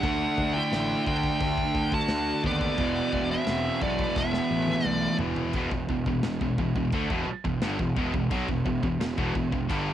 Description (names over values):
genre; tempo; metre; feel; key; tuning
heavy metal; 87 BPM; 4/4; straight; E minor; A4 = 444 Hz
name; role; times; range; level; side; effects
high-gain lead guitar; melody; 0.0-5.2 s; D5 to A5; -29 LUFS; left 1 dB; distortion, cassette tape
high-gain lead guitar; second line; 0.0-5.2 s; B3 to F#4; -32 LUFS; right 7 dB; distortion, cassette tape
distorted electric guitar; riff; 0.0-9.9 s; E2 to D4; -34 LUFS; left 2 dB; distortion, cassette tape
heavy high-gain guitar; riff; 0.0-9.9 s; E2 to D4; -31 LUFS; right 6 dB; distortion, cassette tape
high-gain distorted guitar; riff; 0.0-9.9 s; E2 to D4; -34 LUFS; left 8 dB; distortion, cassette tape
fuzz picked electric bass; bass; 0.0-9.9 s; E1 to D#2; -32 LUFS; left 1 dB; overdrive
modern studio drum kit; drums; 0.0-9.9 s; china cymbal, crash cymbal, kick drum, snare drum, toms; -33 LUFS; left 1 dB; cassette tape
room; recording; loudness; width
little or no reverb; home recording on cassette, faint mains hum; -24 LUFS; side -11 dB against mid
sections
0.0-5.5 A section; 5.5-9.9 B section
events
drum fill 4.2-5.5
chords
0.0 D5; 2.8 E5; 5.5 Em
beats
| 0.03 0.72 1.41 2.10 | 2.79 3.48 4.17 4.86 | 5.55 6.24 6.93 7.62 | 8.31 9.00 9.69